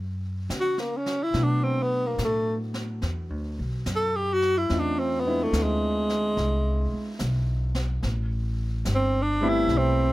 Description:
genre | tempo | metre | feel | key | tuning
jazz ballad | 72 BPM | 4/4 | swing 67% on 8ths | unclear | A4 = 445 Hz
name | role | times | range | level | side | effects
upright bass | bass | 0.0-10.1 s | G1 to C#3 | -27 LUFS | equal | none
jazz brush drum kit | drums | 0.5-10.1 s | brushed snare drum, hi-hat, snare drum | -37 LUFS | right 1 dB | none
breathy tenor saxophone | melody | 0.6-10.1 s | G#3 to A4 | -24 LUFS | equal | none
warm concert grand piano | accompaniment | 1.3-10.1 s | F#3 to F#4 | -31 LUFS | equal | none
room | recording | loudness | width
little or no reverb | none | -23 LUFS | side -17 dB against mid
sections
0.0-10.1 A section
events
tenor saxophone solo 0.0-10.1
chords
0.0 F#5; 1.3 Bm7; 4.7 E7b13; 8.0 Am9

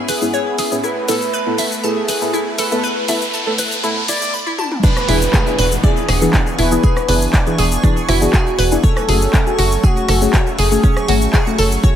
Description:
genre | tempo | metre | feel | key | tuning
progressive house | 120 BPM | 4/4 | straight | E mixolydian | A4 = 441 Hz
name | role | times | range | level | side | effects
lush unison pad | sustained chords | 0.0-12.0 s | E3 to G#5 | -26 LUFS | equal | chorus, sidechain pumping
riser and downlifter | sound effects | 0.0-8.8 s | none | -26 LUFS | equal | none
expressive synth lead | melody | 0.1-11.2 s | F#4 to D5 | -22 LUFS | right 1 dB | wide subtle chorus, tape echo
glassy wavetable pluck | arpeggios | 0.1-11.9 s | C#4 to D6 | -22 LUFS | right 1 dB | chorus, phaser, sidechain pumping, tape echo
tight sequencer bass | bass | 0.1-11.8 s | E1 to B1 | -18 LUFS | equal | sidechain pumping
deep house drum kit | drums | 0.1-11.9 s | crash cymbal, handclaps, hi-hat, rim click, shaker, toms | -22 LUFS | left 1 dB | sidechain pumping on hats, sidechain pumping on perc, sidechain pumping on toms, sidechain pumping on cymbals
deep mellow chord stab | stabs | 0.2-12.0 s | G#2 to A4 | -21 LUFS | left 2 dB | chorus, sidechain pumping, tape echo
electronic kick drum | drums | 4.8-11.9 s | none | -14 LUFS | equal | none
backwards swelling texture | texture | 5.7-12.0 s | C#6 | -31 LUFS | right 1 dB | built-in reverb, sidechain pumping
room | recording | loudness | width
light reverb | high-pass filter | -13 LUFS | side -10 dB against mid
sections
0.0-4.8 A section; 4.8-12.0 B section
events
build-up 0.0-4.8; riser 0.0-4.3; filter sweep on synth stab 0.0-4.8; filter sweep 0.0-4.8; break 4.3-4.8; drum fill 4.6; drop 4.8-12.0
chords
0.0 C#m7/G#; 0.8 Asus2; 4.8 E7; 8.8 F#madd9

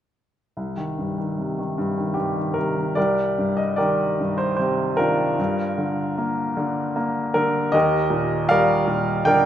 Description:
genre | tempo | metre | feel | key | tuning
classical, lyrical solo piano | 75 BPM | 3/4 | uneven beats, rubato | C minor | A4 = 440 Hz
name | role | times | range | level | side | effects
clear baby grand piano | solo | 0.6-9.5 s | C2 to G5 | -20 LUFS | equal | none
room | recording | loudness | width
light reverb | minimal, uncompressed stereo recording | -20 LUFS | side -10 dB against mid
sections
0.6-3.0 A section; 3.0-9.5 B section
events
none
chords
0.6 Cm; 3.0 Cm7; 5.4 Gm7; 7.7 Ebmaj9

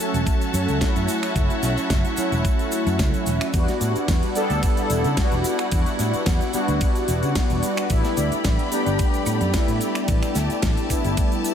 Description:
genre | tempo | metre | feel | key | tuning
nu-disco, nu disco | 110 BPM | 4/4 | swing 54% on 16ths | E dorian | A4 = 440 Hz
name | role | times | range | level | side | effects
mellow synth brass | accompaniment | 0.0-11.5 s | F#3 to A4 | -24 LUFS | equal | chorus, sidechain pumping, ping-pong delay
rich studio string section | sustained chords | 0.0-11.5 s | A3 to B5 | -29 LUFS | left 1 dB | sidechain pumping
pop drum kit | drums | 0.0-11.5 s | cabasa, finger snaps, hi-hat, ride cymbal, snare drum | -30 LUFS | equal | none
egg shaker | percussion | 0.0-11.5 s | none | -40 LUFS | right 3 dB | none
fingered electric bass | bass | 0.1-11.1 s | E1 to C#3 | -24 LUFS | equal | tube saturation
electronic kick drum | drums | 0.3-11.3 s | none | -22 LUFS | equal | none
room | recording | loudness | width
light reverb, digital ambience | none | -19 LUFS | side -8 dB against mid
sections
0.0-11.5 A section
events
none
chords
0.0 F#m7; 3.5 Em9; 7.9 A9sus4

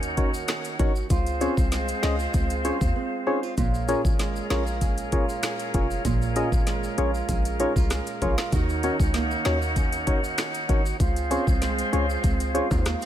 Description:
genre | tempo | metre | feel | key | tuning
dancehall | 97 BPM | 4/4 | straight | Db major | A4 = 440 Hz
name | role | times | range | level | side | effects
bright flute section | sustained chords | 0.0-13.1 s | C4 to Gb5 | -31 LUFS | equal | sidechain pumping
nylon-string guitar | arpeggios | 0.0-13.1 s | Bb2 to Gb4 | -31 LUFS | right 6 dB | none
short 808-style bass | bass | 0.0-13.0 s | F1 to Eb2 | -28 LUFS | equal | none
island pop drum kit | drums | 0.0-13.1 s | finger snaps, hi-hat, kick drum, rim click, snare drum | -26 LUFS | equal | none
tube shaker and timbales | percussion | 0.0-13.1 s | none | -42 LUFS | left 1 dB | none
percussive organ stab | accompaniment | 0.2-12.7 s | Db4 to Eb5 | -28 LUFS | left 2 dB | chorus, sidechain pumping
room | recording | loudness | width
small room ambience | none | -22 LUFS | side -11 dB against mid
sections
0.0-13.1 A section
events
break 3.0-3.6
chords
0.0 Ebm7; 1.1 Dbmaj7; 3.6 Bbm7; 8.5 Ebm7; 11.0 Dbmaj7

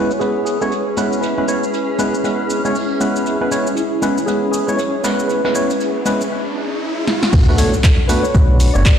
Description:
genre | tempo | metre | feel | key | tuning
deep house | 118 BPM | 4/4 | swing 60% on 16ths | unclear | A4 = 439 Hz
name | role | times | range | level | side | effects
mellow tine electric piano | melody | 0.0-9.0 s | E4 to D5 | -23 LUFS | equal | medium stereo tremolo, tape echo
soft string machine | sustained chords | 0.2-9.0 s | C#4 to C#6 | -27 LUFS | equal | phaser, ensemble chorus, sidechain pumping
percussive organ stab | stabs | 0.0-8.9 s | G#3 to C#5 | -19 LUFS | equal | chorus, sidechain pumping, ping-pong delay
granular cloud pad | texture | 0.0-6.3 s | C#4 to C#5 | -25 LUFS | equal | built-in reverb, sidechain pumping
punchy analog drum machine | drums | 0.1-9.0 s | cabasa, crash cymbal, handclaps, hi-hat, snare drum | -24 LUFS | equal | low-pass filter on perc, low-pass filter on snare, low-pass filter on cymbals, low-pass filter on hats
soft brush drum kit | drums | 0.1-9.0 s | hi-hat, snare drum | -32 LUFS | right 3 dB | sidechain pumping on hats, high-pass filter on hats, low-pass filter on hats, high-pass filter on snare, low-pass filter on snare, high-pass filter on room, low-pass filter on room
riser and impact | sound effects | 5.4-9.0 s | none | -22 LUFS | equal | none
sub bass with octave | bass | 7.3-8.9 s | F#1 to B1 | -14 LUFS | equal | tube saturation, sidechain pumping
electronic kick drum | drums | 7.3-9.0 s | none | -12 LUFS | equal | none
room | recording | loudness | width
moderate plate reverb, RT60 2.2 s | played on a big sound system in a bare room, stone room reverb | -14 LUFS | side -8 dB against mid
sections
0.0-7.3 A section; 7.3-9.0 B section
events
filter sweep on drum 0.0-7.3; riser 5.4-7.3; drum fill 7.1; drop 7.3-9.0; impact 7.3-9.0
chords
0.0 C#m7; 7.3 Bm7

